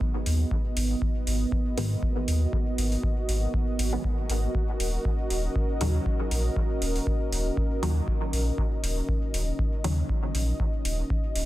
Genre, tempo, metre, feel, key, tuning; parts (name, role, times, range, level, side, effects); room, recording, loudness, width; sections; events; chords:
dub techno; 119 BPM; 4/4; swing 54% on 16ths; G# minor; A4 = 441 Hz
dark analog pad; sustained chords; 0.0-11.5 s; B3 to D#5; -32 LUFS; right 1 dB; chorus, sidechain pumping
filtered dub chord stab; stabs; 0.0-11.5 s; A#2 to B3; -35 LUFS; equal; chorus, phaser, sidechain pumping, dub echo
electronic kick drum; drums; 0.0-11.2 s; -28 LUFS; equal; overdrive
pure sine sub bass; bass; 0.3-11.5 s; D#1 to G#2; -26 LUFS; equal; sidechain pumping
electronic hi-hat; drums; 0.3-11.5 s; -35 LUFS; equal; overdrive
light reverb; dense, heavily limited modern master; -24 LUFS; side -16 dB against mid
0.0-11.5 A section
0.0 G#m7; 4.5 D#m7